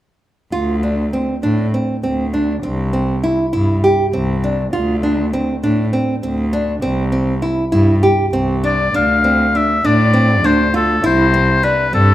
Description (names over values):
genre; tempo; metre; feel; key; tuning
contemporary instrumental, chamber music in an uneven meter; 200 BPM (eighths); 7/8; straight; D minor; A4 = 440 Hz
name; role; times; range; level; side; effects
nylon-string guitar; arpeggios; 0.5-12.1 s; C4 to G4; -18 LUFS; right 1 dB; none
rich cello; bass; 0.5-12.1 s; C2 to A2; -17 LUFS; equal; none
clear oboe; melody; 8.7-12.1 s; A4 to F5; -15 LUFS; left 3 dB; none
room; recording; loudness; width
moderate recital hall reverb, RT60 1.4 s; none; -13 LUFS; side -13 dB against mid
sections
0.5-8.9 A section; 8.9-12.1 B section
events
none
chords
0.5 D7(no3); 2.6 C; 4.7 D7(no3); 6.8 C; 8.9 Dm7; 11.0 Cadd9